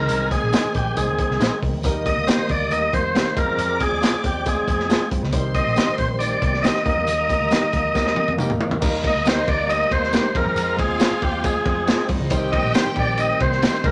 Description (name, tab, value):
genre	uptempo 1960s-style soul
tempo	138 BPM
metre	4/4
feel	straight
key	Eb major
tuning	A4 = 440 Hz
part	tonewheel organ	melody	0.0-13.9 s	G4 to Eb5	-24 LUFS	equal	overdrive, fast rotary speaker
part	warm symphonic violin section	second line	0.0-13.9 s	Ab3 to Eb6	-34 LUFS	equal	none
part	dark concert grand piano	accompaniment	0.0-13.9 s	G3 to C5	-34 LUFS	equal	none
part	tonewheel organ	sustained chords	0.0-13.9 s	Eb3 to Eb4	-32 LUFS	equal	slow rotary speaker, overdrive
part	vintage muted picked electric bass	bass	0.0-13.9 s	Bb1 to G2	-30 LUFS	equal	none
part	crunchy breakbeat drum kit	drums	0.1-13.9 s	crash cymbal, hi-hat, kick drum, ride cymbal, snare drum, toms	-25 LUFS	equal	none
part	congas	percussion	0.1-13.9 s	none	-38 LUFS	equal	none
part	tambourine	percussion	0.1-13.7 s	none	-41 LUFS	equal	none
part	electric guitar at the edge of break-up	stabs	0.5-13.8 s	Bb3 to C5	-29 LUFS	equal	none
room	moderate studio reverb, RT60 0.5 s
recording	none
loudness	-20 LUFS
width	mono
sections	0.0-8.8 A section; 8.8-13.9 A section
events	drum fill 8.0-8.8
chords	0.0 Ab; 1.8 Eb; 3.4 Fm; 5.3 Cm; 6.9 Eb; 10.3 Fm; 12.3 Cm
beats	| 0.10 0.53 0.97 1.41 | 1.84 2.28 2.72 3.15 | 3.59 4.02 4.46 4.90 | 5.33 5.77 6.21 6.64 | 7.08 7.51 7.95 8.39 | 8.82 9.26 9.70 10.13 | 10.57 11.01 11.44 11.88 | 12.31 12.75 13.19 13.63